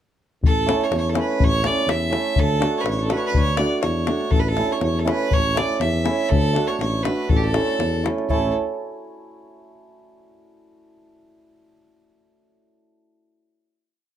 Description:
balkan folk, Balkan wedding band; 122 BPM; 2/4; swing 54% on 16ths; A major; A4 = 439 Hz
dark tuba; bass; 0.4-8.5 s; A1 to E2; -23 LUFS; equal
davul; percussion; 0.4-8.5 s; -22 LUFS; left 3 dB
bright fiddle; melody; 0.5-8.5 s; G4 to E5; -24 LUFS; right 1 dB
hammered dulcimer; accompaniment; 0.7-8.5 s; A3 to A4; -24 LUFS; right 4 dB
light reverb; -18 LUFS; side -10 dB against mid
0.4-8.3 A section; 8.3-9.3 final chord
0.4 A; 2.4 D; 4.3 A; 6.3 D; 7.3 A

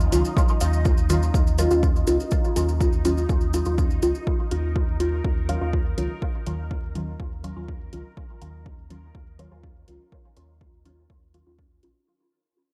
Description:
dub techno; 123 BPM; 4/4; straight; Eb minor; A4 = 441 Hz
warm sub bass; bass; 0.0-11.9 s; Bb1 to Eb2; -28 LUFS; equal; sidechain pumping
maracas; percussion; 0.0-4.2 s; -40 LUFS; equal
bubbling stepped-filter texture; texture; 0.0-12.1 s; Eb4 to Eb5; -40 LUFS; equal; chorus, built-in reverb, sidechain pumping
filtered dub chord stab; stabs; 0.1-12.0 s; Eb3 to F4; -28 LUFS; equal; phaser, sidechain pumping, dub echo
electronic hi-hat; drums; 0.1-11.9 s; -40 LUFS; equal; overdrive
electronic kick drum; drums; 0.4-11.7 s; -26 LUFS; equal; overdrive
light reverb; vinyl crackle; -23 LUFS; mono
0.0-12.1 A section
fade-out 0.0-12.1; filter sweep on synth stab 0.0-12.1
0.0 Ebm9

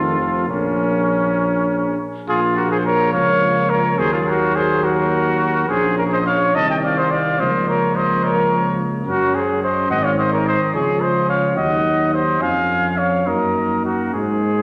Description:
classical, brass quintet; 71 BPM (dotted quarters); 6/8; rubato; Bb minor, Db major from 9.1 s; A4 = 445 Hz
mellow trumpet; melody; 0.0-14.6 s; Ab4 to A5; -26 LUFS; equal
clear flugelhorn; second line; 0.0-14.6 s; Db4 to F5; -21 LUFS; equal
dark trombone; accompaniment; 0.0-14.6 s; Eb3 to Bb3; -27 LUFS; equal
mellow French horn; accompaniment; 0.0-14.6 s; Bb3 to F4; -29 LUFS; equal
mellow tuba; bass; 0.0-14.6 s; F1 to Ab2; -26 LUFS; equal
wet scoring stage reverb, RT60 1.9 s; -18 LUFS; mono
0.0-2.3 A section; 2.3-14.6 B section
0.5 Bbm; 3.1 Bbm/Db; 4.0 Ebm; 5.7 Bbm; 6.5 Cmadd9; 7.4 Bbm/Db; 9.1 Gb69; 9.9 Ab; 10.7 Db; 11.6 Ebm6; 12.4 Db/F; 13.3 Ebm/Gb

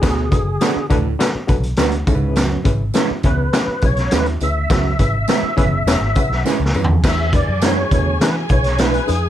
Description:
uptempo 1960s-style soul; 103 BPM; 4/4; straight; E mixolydian; A4 = 439 Hz
tonewheel organ; melody; 0.0-9.3 s; G#4 to E5; -22 LUFS; left 1 dB; overdrive, chorus vibrato, slow rotary speaker
overdriven reed electric piano; accompaniment; 0.0-9.3 s; C#3 to G#5; -24 LUFS; left 3 dB; tremolo
breathy baritone saxophone; riff; 0.0-8.2 s; D2 to B2; -26 LUFS; right 6 dB
vintage muted fingered electric bass; bass; 0.0-9.3 s; E1 to E3; -20 LUFS; equal; tube saturation
raw garage drum kit; drums; 0.0-9.2 s; crash cymbal, hi-hat, kick drum, snare drum, toms; -18 LUFS; equal
tambourine; percussion; 0.0-9.2 s; -36 LUFS; right 8 dB
electric guitar at the edge of break-up; stabs; 0.6-8.9 s; G#3 to B4; -23 LUFS; right 7 dB
rich studio violin section; second line; 7.0-9.3 s; G#4 to G#5; -28 LUFS; left 1 dB
light reverb; dark, warm production; -14 LUFS; side -11 dB against mid
0.0-7.0 A section; 7.0-9.3 B section
reed electric piano fill 5.9-7.0; drum fill 6.5-7.0
0.0 Bm7; 2.1 C#m7; 7.0 E7

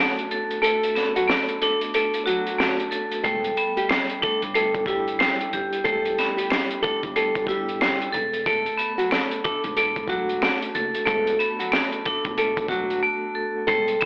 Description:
hip hop, boom-bap hip-hop; 92 BPM; 4/4; swing 60% on 16ths; A4 = 440 Hz
nylon-string guitar; melody; 0.0-14.1 s; F#3 to A4; -25 LUFS; equal; high-pass filter, low-pass filter, tape echo
vibraphone with hard mallets; accompaniment; 0.0-14.1 s; G3 to A4; -24 LUFS; equal; high-pass filter, low-pass filter
crunchy breakbeat drum kit; drums; 0.2-14.1 s; hi-hat, kick drum, snare drum; -27 LUFS; equal
upright bass; bass; 3.2-13.9 s; E1 to G1; -36 LUFS; equal
finger snap; percussion; 3.9-11.9 s; -31 LUFS; equal
light reverb, small room ambience; dry, gritty hardware recording, vinyl crackle, telephone sound; -20 LUFS; side -37 dB against mid
0.0-13.7 A section
break 0.0-3.2; drums muted 13.0-13.7
0.0 Bm7; 3.2 Em7; 8.1 Bm7/E

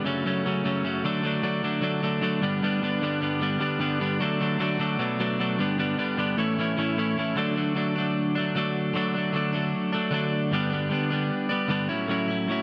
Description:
rock; 152 BPM; 4/4; straight; D major; A4 = 442 Hz
twelve-string electric guitar; solo; 0.0-12.6 s; F#2 to E4; -26 LUFS; equal; analog delay
light reverb; -26 LUFS; mono
0.0-7.4 A section; 7.4-12.6 B section
0.0 F#m; 1.0 D; 2.4 G; 4.2 D; 5.0 Bm7; 5.6 G; 6.4 A; 7.4 D; 10.5 G; 11.9 A6

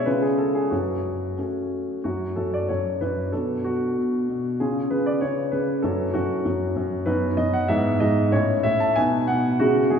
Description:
classical-period piano sonatina; 95 BPM; 2/4; rubato; F# minor; A4 = 440 Hz
warm concert grand piano; solo; 0.0-10.0 s; F#2 to A5; -21 LUFS; equal
wet church reverb, RT60 2.6 s; recorded in a church or concert hall; -21 LUFS; side -7 dB against mid
0.0-2.0 A section; 2.0-10.0 B section
0.1 C#; 0.7 F#m; 2.0 F#5; 3.3 Bm; 4.6 C#; 5.8 F#5; 7.1 B/F#; 7.7 E/G#; 8.3 A; 9.0 B

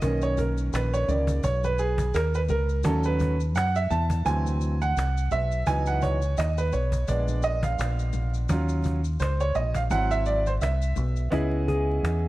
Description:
hip hop, jazz-hop; 85 BPM; 4/4; swing 57% on 16ths; C# dorian; A4 = 441 Hz
clear upright piano; accompaniment; 0.0-12.3 s; C#3 to A5; -27 LUFS; right 3 dB
deep dub fingered electric bass; bass; 0.0-12.3 s; G#1 to F#2; -25 LUFS; equal
cajon; drums; 0.0-12.2 s; -32 LUFS; equal
maracas and congas; percussion; 0.0-11.3 s; -41 LUFS; left 7 dB
hollow-body jazz guitar; melody; 11.3-12.3 s; E4 to G#4; -28 LUFS; left 2 dB
light reverb, studio reverb; dark, warm production, vinyl crackle; -23 LUFS; side -17 dB against mid
0.0-11.3 A section
upright piano solo 0.0-11.3
0.0 Bmaj7; 2.8 D#m7b5; 4.3 D9; 5.7 C#m11; 7.1 A#7b9; 8.5 D#m7; 9.9 G#7alt; 11.3 C#m9

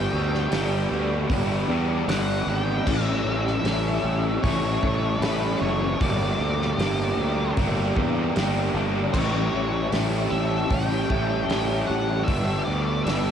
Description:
rock, shoegaze and dream pop; 76 BPM; 4/4; straight; A4 = 439 Hz
octave-fuzz lead guitar; melody; 0.0-13.3 s; B4 to G5; -32 LUFS; left 1 dB; distortion, cassette tape, analog delay
glassy FM pad; sustained chords; 0.0-13.3 s; G4 to D6; -34 LUFS; left 1 dB; ensemble chorus, built-in reverb, cassette tape
crunchy overdriven guitar; riff; 0.0-13.3 s; G2 to E4; -28 LUFS; left 9 dB; ensemble chorus, cassette tape
crunchy overdriven guitar; riff; 0.0-13.3 s; G2 to A4; -29 LUFS; right 10 dB; reverse reverb, cassette tape
fuzz fingered electric bass; bass; 0.0-13.3 s; F#1 to E2; -26 LUFS; equal; overdrive
loose indie drum kit; drums; 0.3-13.3 s; crash cymbal, hi-hat, kick drum, snare drum; -30 LUFS; right 1 dB
direct-recorded clean electric guitar; arpeggios; 2.9-13.3 s; E3 to G4; -37 LUFS; right 10 dB
small room ambience; home recording on cassette; -21 LUFS; side -8 dB against mid
0.0-13.3 A section
0.0 G; 2.9 A7; 6.0 Gm; 9.1 A7; 12.3 G

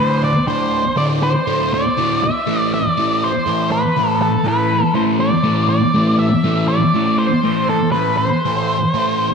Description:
rock; 121 BPM; 4/4; straight; A4 = 440 Hz
octave-fuzz lead guitar; melody; 0.0-9.3 s; A4 to E5; -18 LUFS; equal; distortion, ping-pong delay
thick fuzz guitar; riff; 0.0-9.3 s; D2 to A3; -16 LUFS; equal; distortion, phaser
wet plate reverb, RT60 2.7 s; dreamy mix soaked in reverb; -14 LUFS; side -5 dB against mid
0.0-9.3 A section
0.0 D5; 2.2 Am

